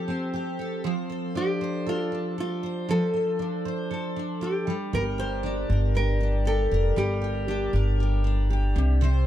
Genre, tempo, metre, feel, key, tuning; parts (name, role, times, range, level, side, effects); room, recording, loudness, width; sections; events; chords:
acoustic pop; 117 BPM; 4/4; swing 55% on 16ths; A4 = 443 Hz
picked steel-string acoustic guitar; accompaniment; 0.0-9.3 s; C3 to C5; -28 LUFS; equal; double-tracked left and right
nylon-string guitar; melody; 1.4-8.0 s; F4 to C5; -30 LUFS; equal; tape echo
upright bass; bass; 4.9-9.3 s; F1 to C2; -23 LUFS; equal
light reverb; dry, close 1970s-style studio recording; -24 LUFS; side -12 dB against mid
0.0-9.3 A section
0.0 Fadd9; 0.8 Dm7/F; 4.7 Gm; 8.8 Csus2